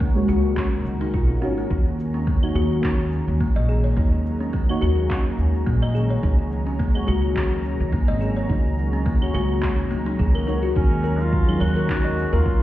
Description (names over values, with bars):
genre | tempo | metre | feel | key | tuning
organic downtempo | 106 BPM | 4/4 | swing 55% on 16ths | Eb minor | A4 = 440 Hz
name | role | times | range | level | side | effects
deep mellow chord stab | accompaniment | 0.0-12.6 s | Gb3 to Db5 | -29 LUFS | right 2 dB | chorus, sidechain pumping, tape echo
warm analog pad | sustained chords | 0.0-12.6 s | Eb3 to Bb5 | -30 LUFS | right 1 dB | chorus, sidechain pumping
kalimba | arpeggios | 0.0-12.6 s | Bb3 to Eb5 | -27 LUFS | left 4 dB | low-pass filter, tape echo
upright bass | bass | 0.0-12.4 s | Ab1 to Eb2 | -22 LUFS | equal | sidechain pumping
electronic cabasa, handclaps and claves | drums | 0.0-12.6 s | none | -35 LUFS | right 1 dB | none
electronic kick drum | drums | 0.0-12.6 s | none | -22 LUFS | equal | none
bronze singing bowl | texture | 0.0-10.8 s | none | barely audible | none | none
clear duduk | melody | 10.8-12.6 s | Db4 to Gb4 | -27 LUFS | equal | none
room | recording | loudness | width
light reverb, small room ambience | heard muffled through a wall, stone room reverb, EQ | -19 LUFS | side -14 dB against mid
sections
0.0-10.8 A section; 10.8-12.6 B section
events
filter sweep on synth stab 0.0-10.8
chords
0.0 Dbsus4; 1.7 Ebm7; 6.2 Dbsus4; 10.8 Ebm7